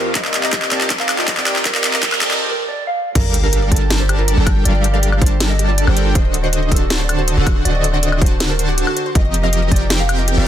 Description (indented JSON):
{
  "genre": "future bass",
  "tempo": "160 BPM",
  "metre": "4/4",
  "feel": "half-time",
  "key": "G minor",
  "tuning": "A4 = 440 Hz",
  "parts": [
    { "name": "mellow electric guitar", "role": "melody", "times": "0.0-10.5 s", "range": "F#4 to F5", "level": "-24 LUFS", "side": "right 2 dB", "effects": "sidechain pumping, dub echo" },
    { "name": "warm studio string section", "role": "sustained chords", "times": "0.0-10.5 s", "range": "Eb3 to G4", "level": "-32 LUFS", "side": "right 3 dB", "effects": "sidechain pumping" },
    { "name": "wide unison pluck", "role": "arpeggios", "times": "0.0-10.4 s", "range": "F4 to F#5", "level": "-30 LUFS", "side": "moving between left 8 dB and right 1 dB", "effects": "auto-pan, sidechain pumping, dub echo" },
    { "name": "soft supersaw", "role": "riff", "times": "0.0-10.5 s", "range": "D3 to A5", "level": "-22 LUFS", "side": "equal", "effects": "sidechain pumping" },
    { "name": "warm 808-style bass", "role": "bass", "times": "0.0-10.5 s", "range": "D1 to F2", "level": "-17 LUFS", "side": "equal", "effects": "sidechain pumping" },
    { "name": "riser and sub drop", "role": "sound effects", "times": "0.0-4.7 s", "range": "none", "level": "-25 LUFS", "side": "right 1 dB", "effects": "none" },
    { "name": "electronic kick drum", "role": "drums", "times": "0.2-9.8 s", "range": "none", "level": "-16 LUFS", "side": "equal", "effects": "none" },
    { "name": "trap drum kit", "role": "drums", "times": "0.2-10.4 s", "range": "crash cymbal, handclaps, hi-hat, snare drum, woodblock", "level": "-19 LUFS", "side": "left 1 dB", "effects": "soft clipping on snare" },
    { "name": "airy dreamy lead", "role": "arpeggios", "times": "3.2-10.5 s", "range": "Eb5 to A5", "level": "-31 LUFS", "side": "equal", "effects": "chorus, sidechain pumping" }
  ],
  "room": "light reverb",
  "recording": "dense, heavily limited modern master, high-pass filter",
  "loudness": "-14 LUFS",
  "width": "side -10 dB against mid",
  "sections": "0.0-3.2 A section; 3.2-10.5 B section",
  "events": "build-up 0.0-3.2; drum fill 0.0-2.4; riser 0.0-2.4; filter sweep on supersaw synth 0.0-3.2; break 2.4-3.2; drop 3.2-10.5; impact 3.2-4.7",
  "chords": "0.2 Cm11; 3.2 Gm9; 6.2 D7b9; 9.2 F9sus4"
}